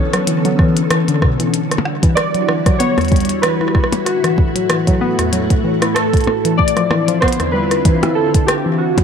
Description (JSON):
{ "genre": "IDM", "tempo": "95 BPM", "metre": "4/4", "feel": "swing 56% on 16ths", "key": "unclear", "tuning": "A4 = 439 Hz", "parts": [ { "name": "warbly lo-fi synth keys", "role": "melody", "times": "0.0-9.0 s", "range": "F#4 to D5", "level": "-20 LUFS", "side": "equal", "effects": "chorus, vintage 12-bit sampler grit, dub echo" }, { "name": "soft string machine", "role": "sustained chords", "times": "0.0-9.0 s", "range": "A2 to A4", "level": "-20 LUFS", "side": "equal", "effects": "phaser, ensemble chorus, vintage 12-bit sampler grit" }, { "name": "warbly dusty pluck", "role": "arpeggios", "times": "0.1-9.0 s", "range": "E2 to E4", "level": "-18 LUFS", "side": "left 2 dB", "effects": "chorus, dub echo" }, { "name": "glitchy drum kit", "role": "drums", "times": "0.1-9.0 s", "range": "hi-hat, percussion blips, rim click", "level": "-20 LUFS", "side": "left 1 dB", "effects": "tape echo" }, { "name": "electronic kick drum", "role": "drums", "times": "0.6-9.0 s", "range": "none", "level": "-14 LUFS", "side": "equal", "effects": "none" } ], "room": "moderate plate reverb, RT60 1.4 s", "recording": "echo-heavy mix", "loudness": "-13 LUFS", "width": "side -7 dB against mid", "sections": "0.0-9.0 A section", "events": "none", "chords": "0.0 Bm9; 1.5 Em9; 4.1 F#m7; 6.6 Dm9", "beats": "0.27 0.91 | 1.54 2.17 2.80 3.43 | 4.06 4.70 5.33 5.96 | 6.59 7.22 7.85 8.48" }